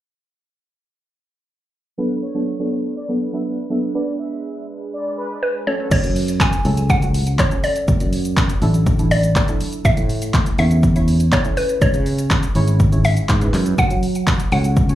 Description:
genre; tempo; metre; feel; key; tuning
dance-pop; 122 BPM; 4/4; straight; F# minor; A4 = 437 Hz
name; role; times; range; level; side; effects
expressive synth lead; melody; 2.0-5.3 s; B4 to E5; -32 LUFS; left 1 dB; chorus, sidechain pumping, slapback echo, tape echo
deep mellow chord stab; accompaniment; 2.0-14.9 s; F#3 to C#5; -24 LUFS; right 2 dB; chorus, sidechain pumping, slapback echo
filtered supersaw swell; sustained chords; 2.0-5.9 s; F#3 to B4; -31 LUFS; equal; sidechain pumping
mallet-like synth pluck; melody; 5.4-14.9 s; B4 to G#5; -22 LUFS; equal; chorus, slapback echo, tape echo
sustaining fretless electric bass; bass; 5.9-14.9 s; F#1 to F#3; -18 LUFS; equal; sidechain pumping
deep house drum kit; drums; 5.9-14.9 s; crash cymbal, handclaps, hi-hat, kick drum, shaker; -18 LUFS; equal; overdrive
room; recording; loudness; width
little or no reverb; live gig heard through the venue's PA, club reverb, low-pass filter; -16 LUFS; side -13 dB against mid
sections
2.0-5.9 A section; 5.9-14.9 B section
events
filter sweep 2.0-5.9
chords
2.0 Bm7; 3.9 G#dim; 5.7 F#m; 7.9 Dadd9/F#; 9.8 A; 11.8 C#m; 13.8 F#m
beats
| 1.98 2.47 2.96 3.46 | 3.95 4.44 4.93 5.42 | 5.91 6.41 6.90 7.39 | 7.88 8.37 8.87 9.36 | 9.85 10.34 10.83 11.32 | 11.82 12.31 12.80 13.29 | 13.78 14.28 14.77

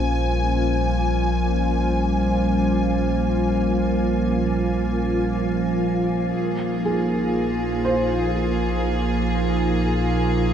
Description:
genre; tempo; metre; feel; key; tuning
ambient; free time; none; none; Bb dorian; A4 = 442 Hz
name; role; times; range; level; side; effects
warbly tape-like pad; sustained chords; 0.0-10.5 s; Bb2 to Ab5; -23 LUFS; right 1 dB; chorus, built-in reverb
warm sub bass; bass; 0.0-10.5 s; Bb1; -26 LUFS; equal; none
organ-like drone; drone; 0.0-10.5 s; Bb3 to F4; -25 LUFS; equal; ensemble chorus, built-in reverb
clear studio violin section; texture; 0.0-10.5 s; Ab4 to Ab5; -30 LUFS; left 1 dB; none
felt-muted upright piano; arpeggios; 6.9-10.5 s; Ab4 to C5; -29 LUFS; right 1 dB; tape echo
room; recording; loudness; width
wet cathedral reverb, RT60 5.5 s; in a vast, echoing space, cassette tape; -19 LUFS; side -8 dB against mid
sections
0.0-10.5 A section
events
none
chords
0.0 Bbm9; 6.4 Fm7/Bb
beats
free time

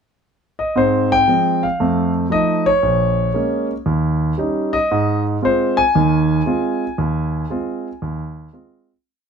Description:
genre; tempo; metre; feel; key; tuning
jazz; 116 BPM; 4/4; swing 67% on 8ths; Ab major; A4 = 440 Hz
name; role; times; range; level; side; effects
warm concert grand piano; solo; 0.6-8.9 s; Bb1 to Ab5; -16 LUFS; equal; none
room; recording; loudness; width
little or no reverb; close, detailed microphones; -16 LUFS; side -6 dB against mid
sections
0.0-0.8 pickup bar; 0.8-9.1 A section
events
fade-out 7.0-9.1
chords
0.0 N.C.; 0.8 Ab6; 1.8 F7; 2.8 Bbm7; 3.9 Eb7; 4.9 Ab6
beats
0.23 | 0.75 1.27 1.79 2.31 | 2.83 3.35 3.87 4.39 | 4.91 5.43 5.95 6.47 | 6.99 7.50 8.02 8.54

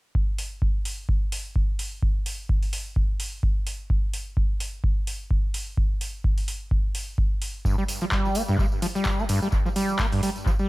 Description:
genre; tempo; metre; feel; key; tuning
acid house; 128 BPM; 4/4; swing 56% on 16ths; G minor pentatonic; A4 = 438 Hz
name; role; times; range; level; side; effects
electronic kick drum; drums; 0.1-10.6 s; none; -24 LUFS; equal; studio reverb
booming analog drum machine; drums; 0.4-10.3 s; handclaps, hi-hat; -32 LUFS; equal; studio reverb, analog delay
overdriven acid bass; riff; 7.7-10.7 s; G2 to Bb3; -25 LUFS; equal; distortion, wide subtle chorus, sidechain pumping, analog delay
tambourine; percussion; 7.7-10.7 s; none; -39 LUFS; right 2 dB; none
room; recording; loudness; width
digital ambience; echo-heavy mix; -23 LUFS; side -20 dB against mid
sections
0.1-10.7 A section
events
none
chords
none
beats
| 0.15 0.62 1.09 1.56 | 2.02 2.49 2.96 3.43 | 3.90 4.37 4.84 5.31 | 5.78 6.24 6.71 7.18 | 7.65 8.12 8.59 9.06 | 9.53 9.99 10.46

